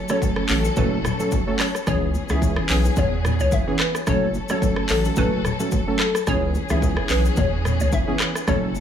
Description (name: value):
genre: afrobeats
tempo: 109 BPM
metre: 4/4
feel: swing 55% on 16ths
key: F# minor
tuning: A4 = 440 Hz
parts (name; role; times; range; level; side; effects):
- warm studio string section; sustained chords; 0.0-8.8 s; E3 to A4; -30 LUFS; left 3 dB; none
- hollow square pluck; melody; 0.1-8.7 s; A4 to E5; -27 LUFS; left 2 dB; chorus, tape echo
- warm analog keys; accompaniment; 0.1-8.7 s; E3 to A4; -25 LUFS; right 3 dB; chorus
- afro-pop drum kit; drums; 0.1-8.8 s; handclaps, hi-hat, kick drum, rim click, shaker; -24 LUFS; equal; none
- bongos and congas; percussion; 0.1-8.8 s; none; -30 LUFS; left 4 dB; none
- round analog bass; bass; 0.5-8.8 s; F#1 to E2; -22 LUFS; equal; none
room: little or no reverb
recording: studio reverb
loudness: -19 LUFS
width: side -9 dB against mid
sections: 0.0-8.8 A section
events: none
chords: 0.0 F#m; 1.9 C#m7; 4.1 F#m; 6.3 C#m7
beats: 0.22 0.77 1.32 | 1.87 2.42 2.97 3.52 | 4.07 4.62 5.17 5.72 | 6.27 6.83 7.38 7.93 | 8.48